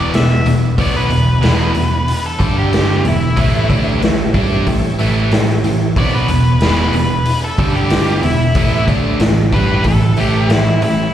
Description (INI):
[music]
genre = blues rock power trio and southern rock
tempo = 93 BPM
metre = 4/4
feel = straight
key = unclear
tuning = A4 = 438 Hz
[part]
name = octave-fuzz lead guitar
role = melody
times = 0.0-11.1 s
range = E4 to E5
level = -20 LUFS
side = left 1 dB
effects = distortion, slapback echo
[part]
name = bright tonewheel organ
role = sustained chords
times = 0.0-11.1 s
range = E3 to C#5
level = -26 LUFS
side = right 3 dB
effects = slow rotary speaker, overdrive, chorus vibrato
[part]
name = overdriven electric guitar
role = riff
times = 0.0-11.1 s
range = E2 to G4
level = -16 LUFS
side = equal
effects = slapback echo
[part]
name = vintage muted picked electric bass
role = bass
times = 0.0-11.1 s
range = E1 to G2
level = -17 LUFS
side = equal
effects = none
[part]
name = raw garage drum kit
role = drums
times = 0.1-11.0 s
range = hi-hat, kick drum, snare drum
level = -18 LUFS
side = equal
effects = none
[sound]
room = light reverb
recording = live gig heard through the venue's PA, recital hall reverb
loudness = -12 LUFS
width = side -11 dB against mid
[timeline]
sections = 0.0-11.1 A section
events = lead electric guitar solo 0.0-11.1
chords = 0.0 E7; 2.4 G5; 3.0 E5; 3.4 A7; 6.0 E7; 7.6 G5; 8.2 E5; 8.6 A7